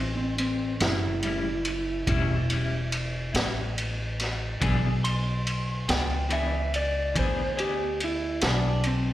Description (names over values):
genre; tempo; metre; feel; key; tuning
slow blues; 47 BPM (dotted quarters); 12/8; straight; A mixolydian; A4 = 440 Hz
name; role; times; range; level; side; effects
electric slide guitar; melody; 0.0-9.1 s; C4 to C6; -30 LUFS; right 1 dB; slapback echo
upright bass; bass; 0.0-9.1 s; E1 to D2; -28 LUFS; equal; none
raw garage drum kit; drums; 0.4-9.0 s; kick drum, ride cymbal, snare drum; -30 LUFS; equal; none
clean electric guitar; accompaniment; 0.8-8.7 s; A2 to G#4; -32 LUFS; left 4 dB; tremolo, slapback echo
room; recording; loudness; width
light reverb; live gig heard through the venue's PA, recital hall reverb; -24 LUFS; side -14 dB against mid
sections
0.0-9.1 A section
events
electric slide guitar solo 0.0-9.1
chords
0.0 A7; 4.6 E7